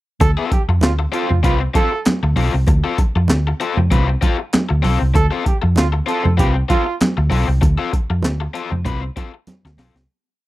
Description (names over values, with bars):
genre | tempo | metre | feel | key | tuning
funk | 97 BPM | 4/4 | swing 56% on 16ths | D dorian | A4 = 440 Hz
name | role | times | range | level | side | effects
brilliant trombone | second line | 0.2-6.9 s | F4 to A4 | -22 LUFS | right 5 dB | none
overdriven electric guitar | accompaniment | 0.2-10.0 s | C4 to B4 | -23 LUFS | left 6 dB | none
hollow-body short-scale fingered electric bass | bass | 0.2-10.0 s | B1 to F2 | -16 LUFS | equal | none
breakbeat sampler-style drum kit | drums | 0.2-10.1 s | handclaps, hi-hat, kick drum, snare drum | -18 LUFS | equal | overdrive
congas | percussion | 0.2-9.9 s | none | -25 LUFS | right 3 dB | none
room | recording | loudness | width
little or no reverb | dry, close 1970s-style studio recording | -15 LUFS | side -17 dB against mid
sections
0.2-10.1 groove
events
fade-out 7.6-10.1; drum fill 9.5-10.1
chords
0.2 Dm7